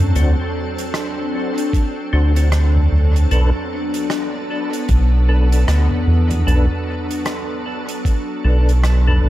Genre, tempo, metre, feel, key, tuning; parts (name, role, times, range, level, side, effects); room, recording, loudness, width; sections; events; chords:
ambient dub; 76 BPM; 4/4; swing 60% on 16ths; A4 = 440 Hz
soft additive organ-like pad; sustained chords; 0.0-9.3 s; F#3 to A4; -23 LUFS; left 1 dB; ensemble chorus, built-in reverb
round analog bass; bass; 0.0-9.3 s; B1 to F#2; -13 LUFS; equal
soft-mallet drum kit; drums; 0.0-9.2 s; hi-hat, rim click, toms; -25 LUFS; equal; dub echo
percussive tonewheel organ; stabs; 0.2-9.3 s; D4 to C5; -27 LUFS; left 2 dB; chorus vibrato, slow rotary speaker, dub echo
electronic kick drum; drums; 1.7-8.2 s; -16 LUFS; equal; overdrive
studio reverb; -15 LUFS; side -14 dB against mid
0.0-9.3 A section
0.0 D7; 3.3 Bm7